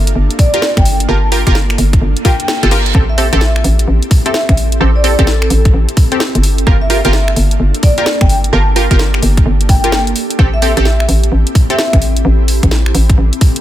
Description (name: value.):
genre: UK garage, two-step garage.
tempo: 129 BPM.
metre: 4/4.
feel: swing 64% on 16ths.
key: A phrygian.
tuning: A4 = 441 Hz.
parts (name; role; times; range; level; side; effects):
ethereal airy pad; sustained chords; 0.0-13.6 s; Bb3 to A4; -22 LUFS; equal; ensemble chorus, built-in reverb, sidechain pumping.
hollow knocking FM bass; bass; 0.0-13.3 s; G1 to A1; -12 LUFS; equal; none.
garage drum kit; drums; 0.1-13.6 s; finger snaps, hi-hat, snare drum; -19 LUFS; equal; soft clipping on snare.
vibraphone with medium mallets; melody; 0.4-11.9 s; A4 to A5; -19 LUFS; left 1 dB; ping-pong delay.
electronic kick drum; drums; 0.4-13.5 s; none; -11 LUFS; equal; none.
punchy chord stab; stabs; 0.5-11.8 s; C4 to Bb4; -18 LUFS; right 1 dB; chorus, ping-pong delay.
reverse cymbal; sound effects; 2.2-2.9 s; none; -23 LUFS; right 6 dB; none.
room: digital ambience.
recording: dense, heavily limited modern master.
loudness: -9 LUFS.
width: side -13 dB against mid.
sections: 0.0-13.6 A section.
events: reverse cymbal 2.2-2.9.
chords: 0.0 Gm7; 2.9 Am7; 6.4 Gm7; 10.4 Am7.